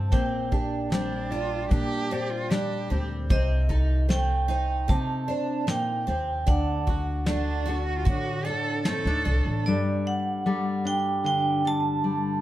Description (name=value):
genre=acoustic folk duo or small band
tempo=76 BPM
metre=4/4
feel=straight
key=unclear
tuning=A4 = 442 Hz
part: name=vibraphone with hard mallets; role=melody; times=0.0-12.4 s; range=D5 to A5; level=-30 LUFS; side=right 4 dB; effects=slapback echo
part: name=nylon-string guitar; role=accompaniment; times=0.0-12.4 s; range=G2 to D5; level=-30 LUFS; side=left 3 dB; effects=none
part: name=picked twelve-string acoustic guitar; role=arpeggios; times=0.0-9.6 s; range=C4 to F#4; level=-32 LUFS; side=right 2 dB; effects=none
part: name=upright bass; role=bass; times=0.0-9.6 s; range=A1 to D3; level=-27 LUFS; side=equal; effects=none
part: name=soft brush drum kit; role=drums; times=0.1-9.4 s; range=hi-hat, kick drum, snare drum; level=-26 LUFS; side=equal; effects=none
part: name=warm cello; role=second line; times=0.9-9.6 s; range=D4 to A4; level=-32 LUFS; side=right 3 dB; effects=none
room=light reverb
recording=none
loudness=-23 LUFS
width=side -14 dB against mid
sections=0.0-9.7 A section; 9.7-12.4 B section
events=none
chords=0.1 Gm/Bb; 3.3 Adim/C; 6.5 D; 9.7 Gsus2